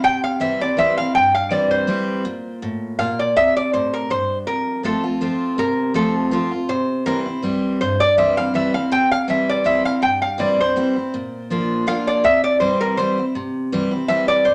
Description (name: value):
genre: bluegrass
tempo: 162 BPM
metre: 3/4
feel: swing 54% on 8ths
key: C mixolydian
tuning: A4 = 439 Hz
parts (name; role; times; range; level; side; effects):
- lap resonator guitar; melody; 0.0-14.5 s; A4 to G5; -20 LUFS; equal; none
- picked steel-string acoustic guitar; accompaniment; 0.0-14.5 s; F2 to F4; -24 LUFS; equal; none
room: wet small room reverb, RT60 0.5 s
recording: none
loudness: -19 LUFS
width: mono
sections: 0.0-4.5 A section; 4.5-13.3 A section; 13.3-14.5 B section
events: resonator guitar played with a steel bar solo 13.3-14.5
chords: 0.0 C; 2.3 Bbmaj7(no3); 3.4 C5; 4.5 F; 6.7 C; 11.1 Bb; 12.2 C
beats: | 0.04 0.41 0.78 | 1.15 1.52 1.89 | 2.26 2.63 3.00 | 3.37 3.73 4.10 | 4.47 4.84 5.21 | 5.58 5.95 6.32 | 6.69 7.06 7.43 | 7.80 8.17 8.54 | 8.91 9.28 9.65 | 10.02 10.39 10.76 | 11.13 11.50 11.87 | 12.24 12.61 12.98 | 13.35 13.72 14.09 | 14.46